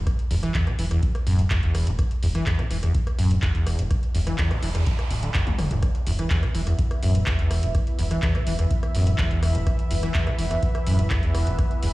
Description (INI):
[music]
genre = acid house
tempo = 125 BPM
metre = 4/4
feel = straight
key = unclear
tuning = A4 = 439 Hz
[part]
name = saturated sub bass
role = bass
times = 0.0-11.9 s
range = D1 to E1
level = -27 LUFS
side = equal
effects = tube saturation, sidechain pumping
[part]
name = electro analog drum machine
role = drums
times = 0.1-11.9 s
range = handclaps, hi-hat, rim click, toms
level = -32 LUFS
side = equal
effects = none
[part]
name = electronic kick drum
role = drums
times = 0.1-11.7 s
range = none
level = -24 LUFS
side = equal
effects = none
[part]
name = acid bass, saw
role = riff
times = 0.3-11.9 s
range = E2 to E3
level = -24 LUFS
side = equal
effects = ensemble chorus, sidechain pumping
[part]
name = noise sweep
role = sound effects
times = 4.1-5.8 s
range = none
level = -36 LUFS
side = right 3 dB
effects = none
[part]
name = lush unison pad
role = sustained chords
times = 6.1-11.9 s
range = E3 to E5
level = -31 LUFS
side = right 1 dB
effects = chorus, phaser, sidechain pumping
[sound]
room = digital ambience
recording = played on a big sound system in a bare room, stone room reverb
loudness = -20 LUFS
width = side -18 dB against mid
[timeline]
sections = 0.0-11.9 A section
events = noise sweep 4.1-5.8; drum fill 5.5-5.8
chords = 0.0 E5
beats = | 0.07 0.55 1.03 1.51 | 1.99 2.47 2.95 3.43 | 3.91 4.39 4.87 5.35 | 5.83 6.31 6.79 7.27 | 7.75 8.23 8.71 9.19 | 9.67 10.15 10.63 11.11 | 11.59